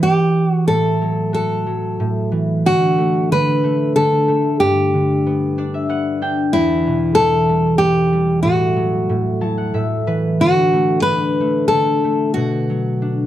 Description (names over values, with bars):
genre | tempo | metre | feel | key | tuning
children's music, lullaby | 92 BPM | 3/4 | straight | D major | A4 = 440 Hz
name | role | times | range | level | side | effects
nylon-string guitar | melody | 0.0-13.3 s | E4 to B4 | -17 LUFS | equal | plate reverb
concert harp | accompaniment | 0.0-13.3 s | E2 to A5 | -18 LUFS | equal | none
room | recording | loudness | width
moderate studio reverb, RT60 0.6 s | dark, warm production | -15 LUFS | side -12 dB against mid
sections
0.0-2.6 A section; 2.6-13.3 B section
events
harp fill 5.2-6.5, 9.1-10.4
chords
0.0 Em; 0.7 F#m/A; 2.0 A5; 2.6 D; 4.6 G; 6.5 Em; 8.4 F#m/A; 9.7 Asus2; 10.4 D; 12.4 Bm